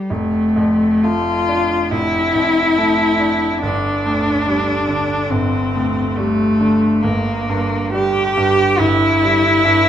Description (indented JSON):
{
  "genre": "classical, romantic duo for cello and grand piano",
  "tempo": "70 BPM",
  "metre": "4/4",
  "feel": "rubato",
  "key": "D minor",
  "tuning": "A4 = 437 Hz",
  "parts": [
    { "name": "rich cello", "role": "melody", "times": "0.0-9.9 s", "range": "G3 to G4", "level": "-15 LUFS", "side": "left 1 dB", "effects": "none" },
    { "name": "bright grand piano", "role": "accompaniment", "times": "0.0-9.9 s", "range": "F1 to D4", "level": "-20 LUFS", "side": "right 2 dB", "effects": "none" }
  ],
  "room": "wet recital hall reverb, RT60 1.6 s",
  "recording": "minimal, uncompressed stereo recording, faint mains hum",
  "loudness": "-14 LUFS",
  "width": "side -10 dB against mid",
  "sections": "0.1-9.9 A section",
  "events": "none",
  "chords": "0.1 Dm/F; 3.6 G5; 7.0 N.C."
}